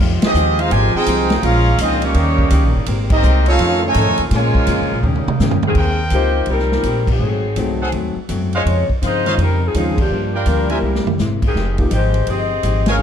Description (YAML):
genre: jazz, big band swing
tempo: 166 BPM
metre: 4/4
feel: swing 65% on 8ths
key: Ab major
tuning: A4 = 440 Hz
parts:
  - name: archtop guitar, miked and amplified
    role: accompaniment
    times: 0.0-12.9 s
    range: G2 to Bb4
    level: -25 LUFS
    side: left 5 dB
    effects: none
  - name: clear saxophone section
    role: sustained chords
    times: 0.0-5.8 s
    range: C3 to G4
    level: -27 LUFS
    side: equal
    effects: none
  - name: upright bass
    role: bass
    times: 0.0-13.0 s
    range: F1 to Bb2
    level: -18 LUFS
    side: equal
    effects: none
  - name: bright trumpet section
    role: melody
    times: 0.2-5.0 s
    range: Bb3 to G#5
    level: -18 LUFS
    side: right 1 dB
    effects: none
  - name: clear trombone section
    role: second line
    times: 0.2-5.0 s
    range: C3 to Ab4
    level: -22 LUFS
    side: right 4 dB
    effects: none
  - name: swinging big-band drum kit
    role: drums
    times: 0.2-12.9 s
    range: crash cymbal, hi-hat, kick drum, ride cymbal, snare drum, toms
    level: -22 LUFS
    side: equal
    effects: none
  - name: dark saxophone section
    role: melody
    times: 5.7-13.0 s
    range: Eb3 to F5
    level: -20 LUFS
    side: left 3 dB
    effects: none
  - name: clear trumpet section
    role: stabs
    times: 5.8-13.0 s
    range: Ab4 to Ab5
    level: -24 LUFS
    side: right 1 dB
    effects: none
  - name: warm concert grand piano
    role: accompaniment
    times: 6.1-13.0 s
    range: Eb3 to G4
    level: -25 LUFS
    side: equal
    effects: none
room: light reverb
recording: dark, warm production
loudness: -14 LUFS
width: side -8 dB against mid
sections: 0.0-5.8 A section; 5.8-13.0 B section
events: band accent 0.2, 3.1, 7.0, 9.9, 12.8; drum fill 5.0-5.8, 10.8-11.2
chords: 0.0 Fm9; 1.4 Bbm7; 2.2 Eb7; 2.9 Abmaj9; 3.6 F7alt; 4.3 Bbm7; 5.0 Eb7; 5.8 Abmaj9; 7.2 Ab7b9; 8.7 Dbmaj9; 10.1 Gm7; 10.8 C7b13; 11.5 Fm9